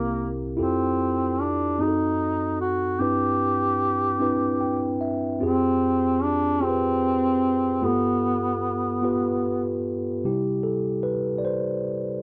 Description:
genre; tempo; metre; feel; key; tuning
gospel; 50 BPM (dotted quarters); 6/8; straight; C major; A4 = 438 Hz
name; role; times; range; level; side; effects
warm duduk; melody; 0.0-9.9 s; Bb3 to G4; -26 LUFS; equal; none
mellow tine electric piano; accompaniment; 0.0-12.2 s; C2 to G5; -27 LUFS; equal; none
room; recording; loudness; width
small room reverb; dry, close 1970s-style studio recording; -24 LUFS; mono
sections
0.0-10.3 A section; 10.3-12.2 B section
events
tine electric piano fill 4.2-5.4; tine electric piano solo 10.3-12.2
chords
0.0 C7; 0.6 Fmaj9; 1.8 F#dim7; 3.0 Cmaj9/G; 5.4 Fmadd9; 7.8 G9; 10.3 C

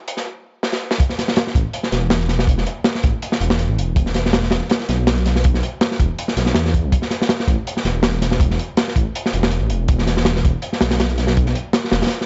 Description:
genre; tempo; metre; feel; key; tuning
drum and bass, jungle; 162 BPM; 4/4; swing 55% on 16ths; unclear; A4 = 439 Hz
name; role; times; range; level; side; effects
crunchy breakbeat drum kit; drums; 0.1-12.3 s; hi-hat, kick drum, snare drum; -20 LUFS; equal; high-pass filter on kick, high-pass filter on hats, high-pass filter on snare, high-pass filter on room
dark detuned saw bass; bass; 1.6-12.0 s; E1 to E2; -22 LUFS; equal; tube saturation
room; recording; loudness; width
little or no reverb; nothing above 7.8 kHz; -19 LUFS; mono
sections
1.0-12.3 A section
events
drum fill 0.6-1.0; drop 1.0-12.3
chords
none

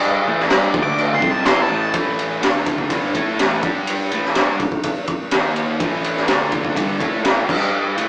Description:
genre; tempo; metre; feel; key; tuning
garage rock duo or trio; 124 BPM; 4/4; straight; unclear; A4 = 441 Hz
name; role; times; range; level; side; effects
thick fuzz guitar; riff; 0.0-8.1 s; G2 to A4; -20 LUFS; equal; distortion
raw garage drum kit; drums; 0.0-8.1 s; crash cymbal, kick drum, ride cymbal, snare drum; -18 LUFS; equal; none
group handclap; percussion; 0.5-1.6 s; none; -32 LUFS; equal; none
octave-fuzz lead guitar; melody; 0.8-1.9 s; A5 to D6; -20 LUFS; equal; distortion
room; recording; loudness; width
moderate studio ambience, RT60 0.5 s; band playing live in one room, cassette tape, small speaker sound; -16 LUFS; side -29 dB against mid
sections
0.0-1.9 A section; 1.9-8.1 B section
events
lead electric guitar solo 0.0-1.9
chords
0.3 A5; 0.7 D5; 1.2 A5; 2.4 D5; 2.9 A5; 3.6 G5; 4.1 A5; 5.3 D#5; 5.8 A5; 6.3 D5; 6.8 A5; 7.5 G5

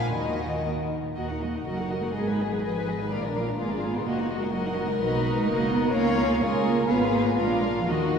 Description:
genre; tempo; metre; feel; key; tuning
quick classical-period movement for string orchestra; 115-129 BPM; 2/4; rubato; Eb minor; A4 = 440 Hz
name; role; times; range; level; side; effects
dark chamber violin section; melody; 0.0-8.2 s; F4 to F5; -30 LUFS; left 3 dB; none
warm chamber violin section; second line; 0.0-8.2 s; F4 to Ab5; -32 LUFS; left 3 dB; none
warm chamber viola section; accompaniment; 0.0-8.2 s; Eb3 to Cb5; -31 LUFS; equal; none
dark chamber cello section; bass; 0.0-8.2 s; Eb2 to Cb4; -28 LUFS; right 2 dB; none
warm chamber double bass section; bass; 0.0-8.2 s; Gb1 to Db3; -33 LUFS; right 3 dB; none
room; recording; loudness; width
wet church reverb, RT60 3.7 s; minimal, uncompressed stereo recording; -23 LUFS; side -6 dB against mid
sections
0.0-1.2 A section; 1.2-8.2 B section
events
none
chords
0.1 Ebm; 1.7 Ebm/Gb; 2.2 Abm; 3.1 Bb; 3.6 Bb7/Ab; 4.1 Ebm/Gb; 5.0 B; 5.9 Db; 6.9 Fdim/Ab; 7.4 Bb7

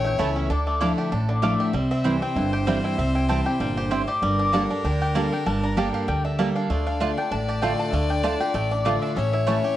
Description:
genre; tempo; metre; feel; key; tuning
bluegrass; 194 BPM; 4/4; swing 54% on 8ths; D minor; A4 = 439 Hz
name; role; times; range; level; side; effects
bluegrass banjo; melody; 0.0-9.8 s; D3 to G4; -32 LUFS; right 4 dB; plate reverb
mandolin; melody; 0.0-9.8 s; C5 to Bb5; -29 LUFS; left 3 dB; none
clear fiddle; second line; 0.0-9.8 s; A4 to D5; -31 LUFS; left 5 dB; plate reverb
picked steel-string acoustic guitar; accompaniment; 0.0-9.8 s; E2 to A4; -25 LUFS; equal; none
upright bass; bass; 0.0-9.6 s; G1 to D2; -27 LUFS; right 1 dB; none
mandolin; stabs; 0.2-9.6 s; A3 to D6; -29 LUFS; right 6 dB; plate reverb
room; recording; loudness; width
moderate small room ambience, RT60 0.5 s; worn, warbling old tape, cassette tape, warbly pitch drift; -21 LUFS; side -13 dB against mid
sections
0.0-1.7 A section; 1.7-9.8 A section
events
none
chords
0.0 A; 0.5 Dmadd9; 1.7 C; 4.2 Gmadd9; 6.7 Dm; 9.2 A

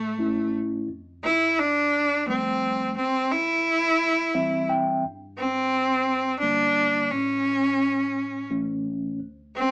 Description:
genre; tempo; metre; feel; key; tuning
acoustic folk-pop ballad; 87 BPM; 3/4; straight; unclear; A4 = 440 Hz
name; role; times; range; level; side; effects
bright cello; melody; 0.0-9.7 s; A3 to E4; -22 LUFS; equal; none
mellow tine electric piano; accompaniment; 0.0-9.7 s; C2 to G5; -27 LUFS; equal; medium stereo tremolo
room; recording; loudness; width
moderate studio reverb, RT60 0.6 s; small speaker sound; -21 LUFS; side -21 dB against mid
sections
0.0-9.2 A section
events
none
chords
0.0 A; 0.9 Fadd9; 3.0 C; 5.0 Gm; 7.1 A; 9.2 N.C.

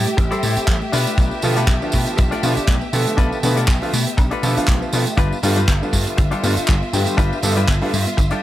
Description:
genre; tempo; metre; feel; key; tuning
nu-disco, nu disco; 120 BPM; 4/4; swing 55% on 16ths; unclear; A4 = 440 Hz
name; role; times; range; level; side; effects
warm symphonic violin section; sustained chords; 0.0-8.4 s; F4 to E5; -26 LUFS; equal; sidechain pumping
soft round pluck; arpeggios; 0.0-8.4 s; G3 to D4; -28 LUFS; left 2 dB; chorus, vintage 12-bit sampler grit, sidechain pumping, tape echo
vintage slap bass; bass; 0.0-8.3 s; G1 to B2; -21 LUFS; equal; sidechain pumping
damped 70s drum kit; drums; 0.1-8.4 s; handclaps, hi-hat, tambourine, woodblock; -25 LUFS; right 2 dB; small room ambience
direct-recorded clean electric guitar; riff; 0.2-8.4 s; D4 to D5; -26 LUFS; left 4 dB; lush chorus, analog delay
kick drum; drums; 0.2-8.3 s; none; -17 LUFS; equal; small room ambience
warm grand piano; accompaniment; 1.4-7.9 s; D3 to B4; -23 LUFS; right 1 dB; sidechain pumping, analog delay
room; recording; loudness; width
light reverb; none; -16 LUFS; side -14 dB against mid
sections
0.0-8.4 A section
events
clean electric guitar fill 8.2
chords
0.0 Am7; 0.9 Bm7b5; 5.2 G7

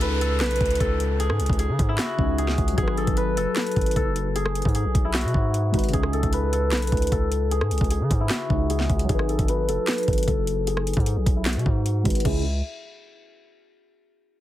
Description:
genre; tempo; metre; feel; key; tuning
hip hop, trap; 152 BPM; 4/4; half-time; C# minor; A4 = 440 Hz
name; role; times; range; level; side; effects
steel-string zither; melody; 0.0-12.4 s; E4 to B4; -27 LUFS; left 2 dB; low-pass filter
warbly lo-fi synth keys; accompaniment; 0.0-12.4 s; C#3 to B4; -31 LUFS; equal; chorus, low-pass filter
distorted 808-style bass; bass; 0.0-12.6 s; F#1 to C#3; -25 LUFS; equal; distortion
trap drum kit; drums; 0.0-12.3 s; crash cymbal, handclaps, hi-hat, kick drum, rim click, snare drum; -25 LUFS; equal; none
downlifter; sound effects; 0.0-2.8 s; none; -36 LUFS; equal; none
room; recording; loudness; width
little or no reverb; heavily compressed radio sound; -20 LUFS; side -14 dB against mid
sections
0.0-12.3 A section; 12.3-13.8 B section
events
filter sweep 0.0-12.3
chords
0.0 C#sus2; 2.8 G#m7; 5.9 C#sus2; 9.1 G#m7; 12.3 N.C.

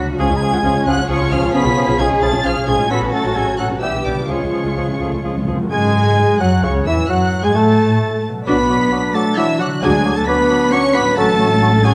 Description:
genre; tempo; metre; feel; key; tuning
classical, dramatic, fast romantic movement for symphony orchestra; 132 BPM; 3/4; straight; F# minor; A4 = 437 Hz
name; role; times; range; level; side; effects
clear oboe; second line; 0.0-11.9 s; G4 to C#6; -28 LUFS; equal; none
dark symphonic violin section; second line; 0.0-11.9 s; F#4 to C#6; -30 LUFS; equal; none
warm clarinet; second line; 0.0-11.9 s; B3 to C#5; -28 LUFS; equal; none
clear bassoon; accompaniment; 0.0-11.9 s; C#3 to A3; -28 LUFS; equal; none
warm symphonic viola section; accompaniment; 0.0-11.9 s; C#3 to G4; -26 LUFS; equal; none
clear trombone section; sustained chords; 0.0-11.3 s; C#3 to D4; -28 LUFS; equal; none
concert harp; arpeggios; 0.0-11.9 s; F#2 to D5; -29 LUFS; equal; none
dark symphonic cello section; bass; 0.0-11.9 s; C#3 to G#4; -24 LUFS; equal; none
warm symphonic double bass section; bass; 0.0-11.9 s; A1 to A2; -24 LUFS; equal; none
rich symphonic violin section; melody; 0.2-11.9 s; C#6 to C#7; -28 LUFS; equal; none
wooden flute; second line; 0.2-11.9 s; C#5 to D6; -26 LUFS; equal; none
mellow French horn section; sustained chords; 0.2-11.9 s; C#3 to C#5; -26 LUFS; equal; none
timpani; percussion; 4.3-5.7 s; C#3; -29 LUFS; equal; none
room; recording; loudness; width
moderate scoring stage reverb, RT60 1.4 s; none; -16 LUFS; mono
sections
0.0-5.7 A section; 5.7-11.9 A section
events
timpani fill 4.3-5.7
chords
0.2 C#; 1.5 C#7/B; 2.9 F#m/A; 3.8 G/B; 4.3 C#; 5.7 F#m; 8.5 Bm; 9.8 Bm/D; 11.2 F#m/A

